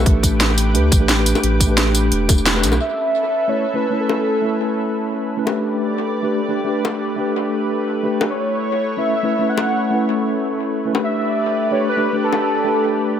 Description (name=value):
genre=liquid drum and bass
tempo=175 BPM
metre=4/4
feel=straight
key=unclear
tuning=A4 = 439 Hz
part: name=mellow tine electric piano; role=accompaniment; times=0.0-13.2 s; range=A3 to B4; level=-21 LUFS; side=equal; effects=medium stereo tremolo, tape echo
part: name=lush unison pad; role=sustained chords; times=0.0-13.2 s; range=A3 to D6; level=-25 LUFS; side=equal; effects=chorus, sidechain pumping
part: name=saturated sub bass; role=bass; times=0.0-2.8 s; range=E1 to D2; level=-18 LUFS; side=equal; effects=none
part: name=drum and bass drum kit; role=drums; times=0.1-2.8 s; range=hi-hat, snare drum, tambourine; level=-19 LUFS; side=equal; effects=overdrive
part: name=electronic kick drum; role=drums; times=0.1-2.4 s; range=none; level=-15 LUFS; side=equal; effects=overdrive
part: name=bongos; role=percussion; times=1.4-12.4 s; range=none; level=-26 LUFS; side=left 4 dB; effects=tape echo
part: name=warm velvety synth lead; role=melody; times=2.8-4.8, 8.3-13.2 s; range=A4 to F#5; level=-20 LUFS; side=equal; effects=chorus, analog delay
room=moderate spring reverb, RT60 1.8 s, digital ambience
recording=echo-heavy mix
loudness=-16 LUFS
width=side -9 dB against mid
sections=0.0-2.8 A section; 2.8-13.2 B section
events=band accent 2.5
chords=0.1 A9sus4; 2.8 B9sus4; 5.5 A9sus4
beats=| 0.06 0.41 0.75 1.09 | 1.43 1.78 2.12 2.46 | 2.81 3.15 3.49 3.83 | 4.18 4.52 4.86 5.21 | 5.55 5.89 6.23 6.58 | 6.92 7.26 7.61 7.95 | 8.29 8.63 8.98 9.32 | 9.66 10.01 10.35 10.69 | 11.03 11.38 11.72 12.06 | 12.40 12.75 13.09